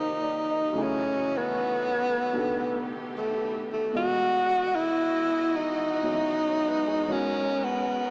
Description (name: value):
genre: jazz ballad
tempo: 76 BPM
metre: 4/4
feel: swing 68% on 8ths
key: unclear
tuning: A4 = 438 Hz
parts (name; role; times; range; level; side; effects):
- breathy tenor saxophone; melody; 0.0-8.1 s; A3 to F#4; -28 LUFS; equal; none
- warm baby grand piano; accompaniment; 0.0-8.1 s; Eb2 to F#5; -36 LUFS; equal; none
- warm studio string section; sustained chords; 0.0-8.1 s; Eb3 to D#5; -39 LUFS; equal; none
room: wet cathedral reverb, RT60 5.1 s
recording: in a vast, echoing space, small speaker sound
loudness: -27 LUFS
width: mono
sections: 0.0-8.1 A section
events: none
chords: 0.0 Eb; 0.8 Gbm7; 2.4 B7alt; 3.9 Emaj9; 7.1 Abm11